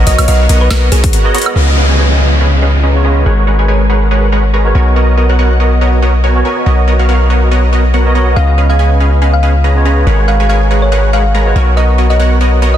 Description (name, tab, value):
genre	future bass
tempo	141 BPM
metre	4/4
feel	swing 56% on 16ths, half-time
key	unclear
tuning	A4 = 439 Hz
part	barky tine electric piano	accompaniment	0.0-12.8 s	C#3 to D#5	-19 LUFS	right 2 dB	overdrive, ensemble chorus, sidechain pumping, dub echo
part	supersaw stab	riff	0.0-12.8 s	G#3 to A#5	-15 LUFS	right 1 dB	sidechain pumping, low-pass filter, dub echo
part	long sustained 808-style bass	bass	0.0-12.8 s	G#1 to C#2	-10 LUFS	equal	tube saturation, sidechain pumping
part	thumb-piano-like synth pluck	melody	0.1-1.1, 8.4-12.8 s	G#4 to E#5	-18 LUFS	right 1 dB	chorus, sidechain pumping, tape echo
part	trap drum kit	drums	0.1-1.7 s	crash cymbal, hi-hat, snare drum, woodblock	-19 LUFS	equal	overdrive, low-pass filter on hats, low-pass filter on perc, low-pass filter on snare, low-pass filter on cymbals
part	electronic kick drum	drums	1.0-1.1 s	none	-12 LUFS	equal	none
part	downlifter	sound effects	1.6-5.0 s	none	-18 LUFS	equal	none
room	light reverb, digital ambience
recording	dense, heavily limited modern master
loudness	-8 LUFS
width	side -10 dB against mid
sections	0.0-1.6 A section; 1.6-12.8 B section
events	drop 0.0-1.6; filter sweep on supersaw synth 1.6-12.8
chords	0.0 Bmaj9#11; 1.6 C#9; 3.3 G#m11; 4.7 Bmaj7; 6.7 Bmaj9#11; 8.4 C#9; 10.1 G#m11; 11.6 Bmaj7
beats	0.28 0.71 1.13 | 1.56 1.98 2.41 2.83 | 3.26 3.69 4.11 4.54 | 4.96 5.39 5.81 6.24 | 6.66 7.09 7.51 7.94 | 8.37 8.79 9.22 9.64 | 10.07 10.49 10.92 11.35 | 11.77 12.20 12.62